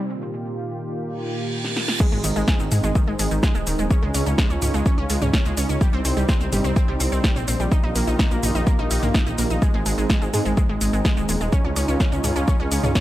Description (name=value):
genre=melodic techno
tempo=126 BPM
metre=4/4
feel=straight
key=unclear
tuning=A4 = 440 Hz
part: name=warm analog pad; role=sustained chords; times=0.0-13.0 s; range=Bb2 to G4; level=-28 LUFS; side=right 1 dB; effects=chorus, sidechain pumping
part: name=wide unison pluck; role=arpeggios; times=0.0-13.0 s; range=Eb3 to Eb5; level=-27 LUFS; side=right 1 dB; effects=sidechain pumping, tape echo
part: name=reverse cymbal and impact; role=sound effects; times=1.2-3.9 s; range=none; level=-31 LUFS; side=right 2 dB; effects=none
part: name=deep house drum kit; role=drums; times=1.6-13.0 s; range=crash cymbal, hi-hat, shaker, snare drum, toms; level=-26 LUFS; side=equal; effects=overdrive
part: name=electronic kick drum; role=drums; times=2.0-13.0 s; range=none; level=-19 LUFS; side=equal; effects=overdrive
part: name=dark detuned saw bass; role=bass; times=2.1-12.9 s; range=Eb1 to Ab2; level=-23 LUFS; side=equal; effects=sidechain pumping
room=digital ambience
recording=dry, gritty hardware recording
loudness=-19 LUFS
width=side -14 dB against mid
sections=0.0-2.0 A section; 2.0-13.0 B section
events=reverse cymbal 1.2-2.0; drum fill 1.6-2.0; drop 2.0-13.0; impact 2.0-3.9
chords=0.1 Eb/Bb; 2.0 Ab; 3.9 Db; 5.8 Cm; 7.7 Eb/Bb; 9.6 Ab; 11.5 Db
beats=| 0.10 0.57 1.05 1.53 | 2.00 2.48 2.95 3.43 | 3.91 4.38 4.86 5.33 | 5.81 6.29 6.76 7.24 | 7.72 8.19 8.67 9.14 | 9.62 10.10 10.57 11.05 | 11.53 12.00 12.48 12.95